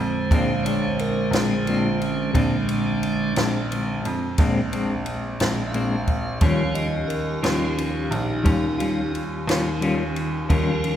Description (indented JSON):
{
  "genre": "slow blues",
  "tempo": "59 BPM (dotted quarters)",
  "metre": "12/8",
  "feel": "straight",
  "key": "unclear",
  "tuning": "A4 = 440 Hz",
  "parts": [
    { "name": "tonewheel organ", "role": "sustained chords", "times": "0.0-11.0 s", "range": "D3 to F5", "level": "-26 LUFS", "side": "right 1 dB", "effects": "slow rotary speaker" },
    { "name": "clear baby grand piano", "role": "bass", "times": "0.0-11.0 s", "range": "Bb1 to F2", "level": "-26 LUFS", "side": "right 1 dB", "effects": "none" },
    { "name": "clean electric guitar", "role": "accompaniment", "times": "0.3-10.7 s", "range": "Bb2 to F4", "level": "-26 LUFS", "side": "left 2 dB", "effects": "tremolo" },
    { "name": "compact cocktail drum kit", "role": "drums", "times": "0.3-11.0 s", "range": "kick drum, ride cymbal, snare drum", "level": "-25 LUFS", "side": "equal", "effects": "none" },
    { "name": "mellow saxophone section", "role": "sustained chords", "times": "6.4-11.0 s", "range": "Db4 to G4", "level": "-35 LUFS", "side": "left 3 dB", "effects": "none" }
  ],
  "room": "wet church reverb, RT60 3.4 s",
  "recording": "recorded in a church or concert hall",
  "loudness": "-20 LUFS",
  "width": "side -10 dB against mid",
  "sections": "0.0-11.0 A section",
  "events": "tonewheel organ solo 0.0-11.0",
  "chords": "0.0 Bb9; 6.4 Eb9",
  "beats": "0.32 1.33 | 2.35 3.37 4.38 5.40 | 6.42 7.44 8.46 9.48 | 10.50"
}